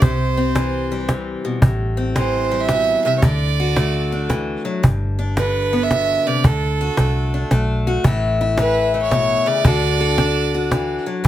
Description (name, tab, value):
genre	honky-tonk and classic country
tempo	112 BPM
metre	3/4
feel	swing 66% on 8ths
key	unclear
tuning	A4 = 436 Hz
part	clear fiddle	second line	0.0-11.3 s	A4 to E5	-21 LUFS	right 5 dB	none
part	picked steel-string acoustic guitar	accompaniment	0.0-11.3 s	G2 to A4	-21 LUFS	left 3 dB	none
part	vintage muted fingered electric bass	bass	0.0-11.3 s	G1 to D2	-22 LUFS	equal	none
part	cajon	drums	0.0-11.3 s	none	-16 LUFS	equal	none
room	moderate studio reverb, RT60 0.5 s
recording	none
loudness	-16 LUFS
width	side -12 dB against mid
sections	0.0-11.3 A section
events	fiddle solo 0.0-11.3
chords	0.0 C; 1.6 Am7; 3.2 D; 4.8 G; 6.4 D; 8.0 A; 9.7 Dadd9